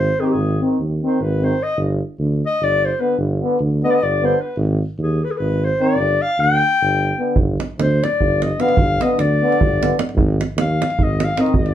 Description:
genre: balkan folk, Balkan brass band.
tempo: 300 BPM (eighths).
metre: 7/8.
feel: straight.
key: G phrygian dominant.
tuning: A4 = 440 Hz.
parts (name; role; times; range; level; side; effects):
dark clarinet; second line; 0.0-11.7 s; G4 to G5; -20 LUFS; left 3 dB; slapback echo.
mellow tuba; bass; 0.0-11.7 s; G1 to Eb2; -20 LUFS; right 1 dB; none.
clear euphonium; accompaniment; 0.2-11.5 s; D3 to Eb3; -25 LUFS; right 5 dB; none.
mellow trombone; accompaniment; 0.2-11.5 s; B3 to C4; -20 LUFS; left 2 dB; none.
davul; percussion; 7.4-11.7 s; none; -20 LUFS; right 2 dB; none.
room: wet studio ambience, RT60 0.5 s.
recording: heard from further back in the room.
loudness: -16 LUFS.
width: side -11 dB against mid.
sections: 0.0-11.7 A section.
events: clarinet solo 0.0-11.7.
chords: 0.0 Ab; 1.8 G; 4.6 Ab; 6.0 G; 10.2 Ab5.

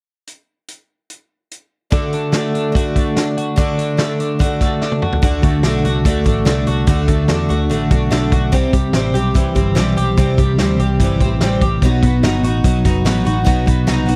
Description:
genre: jangly indie pop.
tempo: 145 BPM.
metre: 4/4.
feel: straight.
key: unclear.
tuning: A4 = 441 Hz.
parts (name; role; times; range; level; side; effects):
loose indie drum kit; drums; 0.3-14.2 s; hi-hat, kick drum, snare drum, toms; -20 LUFS; equal; none.
picked twelve-string acoustic guitar; accompaniment; 1.9-14.2 s; B2 to G4; -23 LUFS; equal; none.
twelve-string electric guitar; arpeggios; 1.9-14.2 s; B2 to G4; -21 LUFS; equal; harmonic tremolo, slapback echo.
vintage muted picked electric bass; bass; 5.2-14.2 s; F#1 to E2; -21 LUFS; equal; none.
room: little or no reverb.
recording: dry, close 1970s-style studio recording.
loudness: -16 LUFS.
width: mono.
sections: 0.3-1.9 A section; 1.9-5.2 B section; 5.2-14.2 C section.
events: drum fill 4.8-5.2.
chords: 0.3 N.C.; 1.9 D; 8.5 C; 11.8 B.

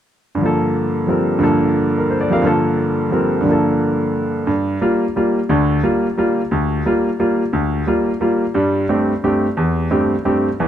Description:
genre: jazz.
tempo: 176 BPM.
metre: 3/4.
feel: swing 62% on 8ths.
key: G minor.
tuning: A4 = 438 Hz.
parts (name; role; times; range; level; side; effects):
clear baby grand piano; solo; 0.3-10.7 s; D2 to F5; -15 LUFS; equal; none.
room: moderate plate reverb, RT60 2.8 s.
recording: none.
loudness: -15 LUFS.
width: side -10 dB against mid.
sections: 0.4-4.5 A section; 4.5-10.7 B section.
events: none.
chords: 0.4 Gm7; 8.6 Am7.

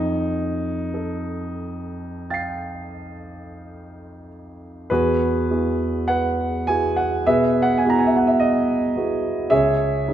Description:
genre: classical, impressionist solo piano.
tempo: 44-54 BPM.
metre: 4/4.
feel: rubato.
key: unclear.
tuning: A4 = 440 Hz.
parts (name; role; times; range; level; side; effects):
warm concert grand piano; solo; 0.0-10.1 s; C#2 to C7; -20 LUFS; right 1 dB; none.
room: moderate concert hall reverb, RT60 2.4 s.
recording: none.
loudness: -18 LUFS.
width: side -10 dB against mid.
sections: 0.0-4.9 A section; 4.9-10.1 B section.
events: none.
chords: 0.0 F9; 4.9 Eadd9; 9.5 C#m.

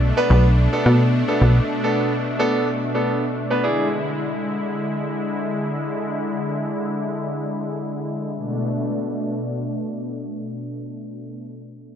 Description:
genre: pop.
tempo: 108 BPM.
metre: 4/4.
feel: straight.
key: B dorian.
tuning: A4 = 438 Hz.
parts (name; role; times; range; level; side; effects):
lush unison pad; sustained chords; 0.0-11.3 s; B2 to E4; -24 LUFS; left 1 dB; chorus, low-pass filter.
plucky analog bass; bass; 0.0-1.6 s; B1 to B2; -14 LUFS; equal; none.
clear concert grand piano; accompaniment; 0.2-3.9 s; B3 to B4; -22 LUFS; right 1 dB; low-pass filter.
room: light reverb, small room ambience.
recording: none.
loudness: -19 LUFS.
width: side -9 dB against mid.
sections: 0.0-8.4 A section; 8.4-10.6 B section.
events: filter sweep 0.0-8.4.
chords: 0.0 Bm7; 3.6 E7; 8.4 Bm7.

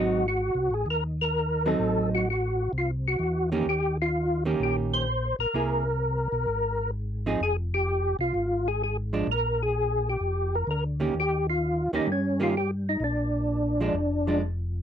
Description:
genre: soul jazz organ trio.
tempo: 128 BPM.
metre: 4/4.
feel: swing 68% on 8ths.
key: unclear.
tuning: A4 = 440 Hz.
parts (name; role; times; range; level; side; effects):
percussive tonewheel organ; melody; 0.0-14.4 s; Db4 to C5; -26 LUFS; left 1 dB; slow rotary speaker, chorus vibrato.
vintage hollow-body jazz guitar; accompaniment; 0.0-14.4 s; Eb3 to G#4; -27 LUFS; right 4 dB; none.
tonewheel organ; bass; 0.0-14.8 s; F1 to G2; -29 LUFS; equal; chorus vibrato, slow rotary speaker.
room: light reverb.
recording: dry, close 1970s-style studio recording.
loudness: -24 LUFS.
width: side -9 dB against mid.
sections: 0.0-14.8 A section.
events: none.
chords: 0.0 Ab7; 1.8 Adim7; 3.7 Eb7; 5.5 C7b13; 7.4 Fm; 9.3 Bb7; 11.1 Eb7; 13.0 Bb7.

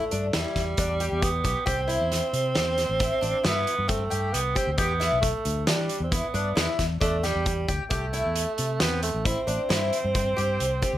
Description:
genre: progressive instrumental, band music in an uneven meter.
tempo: 135 BPM.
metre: 7/4.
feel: straight.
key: unclear.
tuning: A4 = 440 Hz.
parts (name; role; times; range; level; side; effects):
warm tenor saxophone; second line; 0.0-11.0 s; G3 to C4; -28 LUFS; right 3 dB; none.
fingerpicked twelve-string acoustic guitar; arpeggios; 0.0-11.0 s; C4 to G4; -30 LUFS; left 3 dB; lush chorus.
fretless electric bass; bass; 0.1-11.0 s; A1 to E3; -29 LUFS; equal; lush chorus.
oversized low-tuned drum kit; drums; 0.1-10.9 s; hi-hat, kick drum, snare drum; -28 LUFS; equal; none.
room: moderate studio reverb, RT60 0.6 s.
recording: none.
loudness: -23 LUFS.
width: side -13 dB against mid.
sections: 0.0-11.0 A section.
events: none.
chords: 0.0 Em7; 1.7 C; 4.8 Em7; 7.9 C6.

